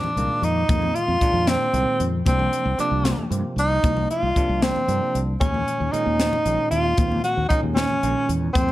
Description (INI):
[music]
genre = electric jazz fusion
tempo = 76 BPM (dotted quarters)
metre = 6/8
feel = straight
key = unclear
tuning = A4 = 439 Hz
[part]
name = breathy tenor saxophone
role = melody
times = 0.0-8.7 s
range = C4 to Gb4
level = -22 LUFS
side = equal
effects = none
[part]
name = bell-like tine electric piano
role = accompaniment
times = 0.0-8.7 s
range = Bb2 to Eb4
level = -28 LUFS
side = right 2 dB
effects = auto-pan
[part]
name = congas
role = percussion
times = 0.0-8.7 s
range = none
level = -31 LUFS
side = left 4 dB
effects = none
[part]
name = fretless electric bass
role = bass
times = 0.2-8.7 s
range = Bb1 to G2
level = -24 LUFS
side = equal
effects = analog chorus
[part]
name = crisp fusion drum kit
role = drums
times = 0.2-8.7 s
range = hi-hat, kick drum, snare drum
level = -24 LUFS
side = equal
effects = none
[sound]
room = light reverb, small room ambience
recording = none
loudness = -19 LUFS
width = side -15 dB against mid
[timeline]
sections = 0.0-8.7 A section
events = none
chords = 0.0 Fm7; 2.3 Cm9; 5.4 Eb5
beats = | 0.69 1.48 | 2.26 3.05 | 3.84 4.62 | 5.41 6.20 | 6.98 7.77 | 8.55